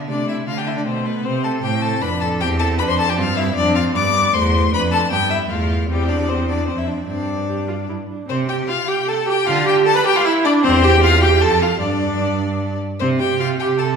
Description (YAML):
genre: quick classical-period movement for string quartet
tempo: 154 BPM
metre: 3/4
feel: straight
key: unclear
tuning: A4 = 440 Hz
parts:
  - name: dark viola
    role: accompaniment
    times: 0.0-14.0 s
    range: A3 to B4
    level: -21 LUFS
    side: right 3 dB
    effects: none
  - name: clear cello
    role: bass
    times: 0.0-14.0 s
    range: E2 to D3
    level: -21 LUFS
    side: right 2 dB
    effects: none
  - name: rich violin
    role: melody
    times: 0.1-13.9 s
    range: G4 to D6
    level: -21 LUFS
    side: left 6 dB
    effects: none
  - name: warm violin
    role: second line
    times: 0.1-14.0 s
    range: G3 to D5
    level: -23 LUFS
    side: left 2 dB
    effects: none
room: wet recital hall reverb, RT60 1.4 s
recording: heard from further back in the room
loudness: -16 LUFS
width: side -6 dB against mid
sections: 0.0-8.3 A section; 8.3-14.0 B section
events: none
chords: 0.1 Am/C; 1.3 F69; 2.4 C/E; 3.6 Dm7/F; 4.7 G7/F; 5.9 C/E; 6.7 Dm7/F; 7.1 Gsus4; 7.9 G5; 8.3 Fadd9/C; 9.5 G7(no3)/D; 10.6 Cadd11/E; 11.4 F; 11.8 G5; 13.0 Fadd9/C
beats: | 0.09 0.48 0.87 | 1.26 1.64 2.03 | 2.42 2.80 3.18 | 3.57 3.95 4.34 | 4.73 5.12 5.51 | 5.90 6.29 6.68 | 7.08 7.49 7.89 | 8.29 8.69 9.08 | 9.47 9.86 10.25 | 10.64 11.03 11.42 | 11.81 12.21 12.61 | 13.00 13.39 13.79